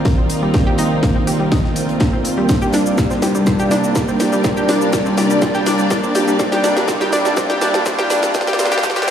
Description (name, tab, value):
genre	melodic techno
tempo	123 BPM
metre	4/4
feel	straight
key	unclear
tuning	A4 = 440 Hz
part	deep dark ambient pad	sustained chords	0.0-9.1 s	C3 to D5	-26 LUFS	equal	chorus, built-in reverb, sidechain pumping
part	brassy analog pad	stabs	0.0-9.1 s	Eb3 to D4	-19 LUFS	right 1 dB	chorus, tremolo, sidechain pumping, tape echo
part	riser	sound effects	0.2-9.1 s	none	-26 LUFS	equal	none
part	warm studio string section	texture	0.0-9.1 s	C4 to D5	-25 LUFS	left 2 dB	sidechain pumping
part	analog pluck	arpeggios	0.1-9.1 s	G3 to G4	-21 LUFS	equal	chorus, sidechain pumping, tape echo
part	electronic kick drum	drums	0.1-8.9 s	none	-19 LUFS	equal	overdrive, studio reverb
part	modern studio drum kit	drums	0.1-9.1 s	hi-hat, snare drum	-37 LUFS	left 2 dB	none
part	techno drum kit	drums	0.1-9.1 s	hi-hat, shaker, snare drum	-21 LUFS	equal	overdrive, studio reverb
room	wet lush hall reverb, RT60 1.6 s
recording	played on a big sound system in a bare room, large studio reverb, high-pass filter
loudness	-14 LUFS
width	side -9 dB against mid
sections	0.0-9.1 A section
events	build-up 0.0-9.1; drum fill 0.0-9.1; filter sweep on synth pluck 0.0-9.1; filter sweep on analog synth pad 0.0-9.1; filter sweep 0.0-9.1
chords	0.0 Cm7; 2.5 Gm/C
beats	0.05 | 0.54 1.03 1.52 2.00 | 2.49 2.98 3.47 3.96 | 4.44 4.93 5.42 5.91 | 6.39 6.88 7.37 7.86 | 8.35 8.83